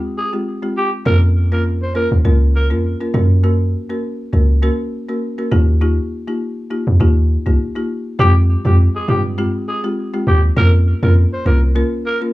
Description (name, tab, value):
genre	afrobeats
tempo	101 BPM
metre	4/4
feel	swing 55% on 16ths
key	F minor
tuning	A4 = 440 Hz
part	folk marimba with medium mallets	accompaniment	0.0-12.3 s	Ab3 to Bb4	-21 LUFS	left 1 dB	none
part	growling alto saxophone	melody	0.2-2.7, 8.2-12.2 s	G4 to C5	-21 LUFS	equal	analog delay
part	deep log drum bass	bass	1.1-11.8 s	C2 to G2	-13 LUFS	equal	none
room	little or no reverb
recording	dry, gritty hardware recording, small room ambience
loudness	-14 LUFS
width	side -17 dB against mid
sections	0.0-8.2 A section; 8.2-12.3 B section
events	break 7.6-8.2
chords	0.0 Fmadd9; 1.1 Bbm/F; 3.1 Gb; 5.5 Ebadd9; 8.2 Fmadd9; 10.6 Bbm